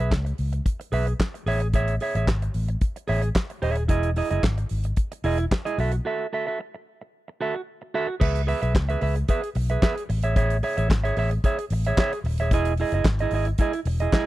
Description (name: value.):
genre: disco.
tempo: 111 BPM.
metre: 4/4.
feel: straight.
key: E major.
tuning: A4 = 439 Hz.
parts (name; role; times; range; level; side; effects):
clean electric guitar; accompaniment; 0.0-14.3 s; E4 to E5; -26 LUFS; right 4 dB; none.
fingered electric bass; bass; 0.0-14.1 s; D#1 to C#2; -24 LUFS; equal; none.
damped 70s drum kit; drums; 0.1-14.3 s; crash cymbal, handclaps, hi-hat, kick drum, snare drum; -22 LUFS; equal; none.
room: small room ambience.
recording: dry, close 1970s-style studio recording.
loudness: -22 LUFS.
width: side -16 dB against mid.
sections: 0.0-8.2 A section; 8.2-14.3 B section.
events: break 6.1-8.2.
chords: 0.0 C#m7; 1.5 Amaj7; 3.9 Emaj7; 5.8 B7sus4 (rootless); 8.2 C#m7; 10.1 Amaj7; 12.5 Emaj7.